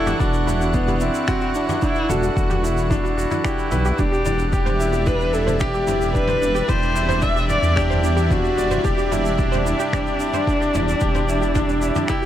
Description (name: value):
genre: piano and strings electronica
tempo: 111 BPM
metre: 4/4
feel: straight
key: unclear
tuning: A4 = 440 Hz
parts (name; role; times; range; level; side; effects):
- dark viola; melody; 0.0-12.3 s; B3 to E5; -23 LUFS; left 1 dB; tape echo
- lush unison pad; sustained chords; 0.0-12.3 s; C3 to F#5; -29 LUFS; equal; chorus
- bright concert grand piano; riff; 0.0-12.3 s; D4 to D5; -24 LUFS; equal; tape echo
- dark detuned saw bass; bass; 0.0-11.9 s; E1 to E2; -23 LUFS; equal; sidechain pumping
- analog pluck; arpeggios; 0.1-12.3 s; D4 to C5; -30 LUFS; right 4 dB; none
- soft brush drum kit; drums; 0.1-12.3 s; finger snaps, shaker, toms; -30 LUFS; equal; none
- electronic kick drum; drums; 0.2-12.2 s; none; -24 LUFS; equal; none
room: light reverb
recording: none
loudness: -17 LUFS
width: side -11 dB against mid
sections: 0.0-12.3 A section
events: none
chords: 0.0 Em11; 4.0 Cadd9/E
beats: 0.20 0.74 1.28 | 1.82 2.37 2.91 3.45 | 3.99 4.53 5.07 5.61 | 6.15 6.69 7.23 7.77 | 8.31 8.85 9.39 9.93 | 10.47 11.01 11.55 12.10